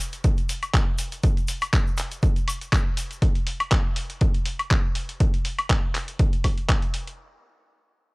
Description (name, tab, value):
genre	house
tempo	121 BPM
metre	4/4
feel	swing 55% on 16ths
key	none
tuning	none
part	tube shaker	percussion	0.0-3.2 s	none	-39 LUFS	left 2 dB	sidechain pumping on perc
part	dusty soul sampler-style drum kit	drums	0.1-7.2 s	handclaps, hi-hat, woodblock	-28 LUFS	left 1 dB	sidechain pumping on hats, sidechain pumping on perc
part	electronic kick drum	drums	0.2-6.8 s	none	-22 LUFS	equal	none
room	digital ambience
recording	dry, gritty hardware recording, transformer saturation, cassette tape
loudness	-21 LUFS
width	side -28 dB against mid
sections	0.0-7.2 A section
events	drop 0.0-7.2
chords	none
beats	0.24 0.74 | 1.24 1.73 2.23 2.72 | 3.22 3.72 4.21 4.71 | 5.20 5.70 6.20 6.69